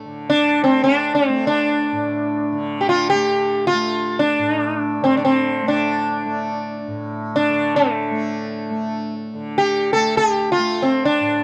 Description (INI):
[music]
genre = indian classical, Hindustani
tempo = free time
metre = none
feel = none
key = A raga malkauns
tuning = A4 = 441 Hz
[part]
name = tanpura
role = drone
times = 0.0-11.4 s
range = A2 to A3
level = -29 LUFS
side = equal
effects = none
[part]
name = sitar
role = melody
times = 0.3-11.4 s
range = A3 to A4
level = -20 LUFS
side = equal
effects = none
[sound]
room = little or no reverb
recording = dry, close 1970s-style studio recording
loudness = -19 LUFS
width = mono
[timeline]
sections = 0.0-9.3 A section; 9.3-11.4 A section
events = none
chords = none